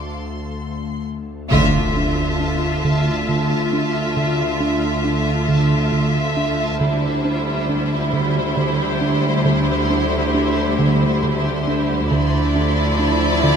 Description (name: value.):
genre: cinematic, suspense film score.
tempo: 68 BPM.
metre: 3/4.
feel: straight.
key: D minor.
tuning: A4 = 439 Hz.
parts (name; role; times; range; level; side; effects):
bowed-like drone; drone; 0.0-13.6 s; D2; -27 LUFS; left 3 dB; built-in reverb.
rich chamber violin section; texture; 0.0-1.0, 12.1-13.6 s; A5 to D6; -29 LUFS; left 5 dB; none.
rich chamber violin section; melody; 1.5-13.6 s; C5 to E5; -26 LUFS; left 3 dB; none.
rich studio violin section; second line; 1.5-13.6 s; E4 to F4; -26 LUFS; right 1 dB; none.
rich studio viola section; accompaniment; 1.5-13.6 s; F3 to A3; -28 LUFS; equal; none.
backwards swelling texture; sustained chords; 2.3-13.6 s; E4 to C6; -28 LUFS; left 2 dB; built-in reverb.
rubbery square bass; riff; 1.5-13.6 s; D3 to D4; -22 LUFS; right 2 dB; none.
rich chamber double bass section; bass; 1.5-13.6 s; D2; -25 LUFS; right 4 dB; none.
rich symphonic cello section; bass; 1.5-13.6 s; D3; -25 LUFS; right 2 dB; none.
impact; sound effects; 1.5-4.2 s; none; -27 LUFS; left 1 dB; none.
room: moderate scoring stage reverb, RT60 1.6 s.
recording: close, detailed microphones.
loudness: -16 LUFS.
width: side -7 dB against mid.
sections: 0.0-1.5 A section; 1.5-13.6 B section.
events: break 0.0-1.5; band accent 1.5-2.4; impact 1.5-4.2.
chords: 0.0 N.C.; 1.5 Dmadd9; 6.8 Cadd9/D; 12.1 Dmadd9.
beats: 0.63 | 1.51 2.40 3.28 | 4.16 5.04 5.93 | 6.81 7.69 8.57 | 9.46 10.34 11.22 | 12.10 12.98.